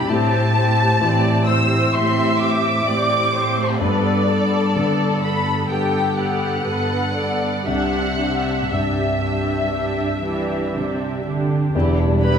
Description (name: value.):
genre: cinematic.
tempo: 57-65 BPM.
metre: 4/4.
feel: rubato.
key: G major.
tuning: A4 = 440 Hz.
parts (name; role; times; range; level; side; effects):
muted studio violin section; melody; 0.0-12.4 s; D5 to E6; -23 LUFS; left 2 dB; none.
muted studio violin section; second line; 0.0-12.4 s; D4 to E5; -26 LUFS; left 2 dB; none.
muted studio viola section; accompaniment; 0.0-12.4 s; B3 to B4; -25 LUFS; right 2 dB; none.
warm concert grand piano; accompaniment; 0.0-12.4 s; C2 to G3; -23 LUFS; left 2 dB; none.
muted symphonic cello section; bass; 0.1-12.4 s; E2 to E3; -23 LUFS; right 2 dB; none.
dark French horn section; sustained chords; 11.7-12.4 s; D4 to G4; -25 LUFS; equal; none.
muted studio double bass section; bass; 11.7-12.4 s; E1; -21 LUFS; right 3 dB; none.
warm clarinet; second line; 12.2-12.4 s; B4; -27 LUFS; left 3 dB; none.
room: wet recital hall reverb, RT60 1.5 s.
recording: minimal, uncompressed stereo recording.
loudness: -17 LUFS.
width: side -7 dB against mid.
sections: 0.0-11.7 A section.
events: none.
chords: 0.1 Am7; 3.8 Gadd9; 7.7 Cadd9; 11.7 Em7.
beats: | 0.08 1.01 1.93 2.86 | 3.81 4.76 5.70 6.66 | 7.66 8.71 9.73 10.75 | 11.74.